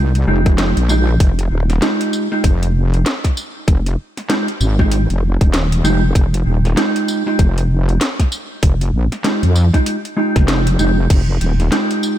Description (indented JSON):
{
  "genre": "glitch hop",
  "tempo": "97 BPM",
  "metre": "4/4",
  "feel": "swing 60% on 16ths",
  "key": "F minor",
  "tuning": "A4 = 441 Hz",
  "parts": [
    { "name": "mellow electric guitar", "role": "stabs", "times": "0.0-12.2 s", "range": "Ab3 to G4", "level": "-20 LUFS", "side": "right 1 dB", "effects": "sidechain pumping, diffuse ambient delay" },
    { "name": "wobble bass", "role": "bass", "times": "0.0-11.7 s", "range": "Eb1 to F2", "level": "-14 LUFS", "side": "equal", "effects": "chorus" },
    { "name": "drum and bass drum kit", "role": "drums", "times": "0.2-12.2 s", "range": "crash cymbal, hi-hat, snare drum, tambourine", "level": "-22 LUFS", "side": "equal", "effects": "none" },
    { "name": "electronic kick drum", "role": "drums", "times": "0.5-11.2 s", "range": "none", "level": "-13 LUFS", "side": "equal", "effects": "none" }
  ],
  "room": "little or no reverb",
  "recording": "none",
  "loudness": "-13 LUFS",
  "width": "side -12 dB against mid",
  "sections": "0.0-12.2 A section",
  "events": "none",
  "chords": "0.0 Fm9"
}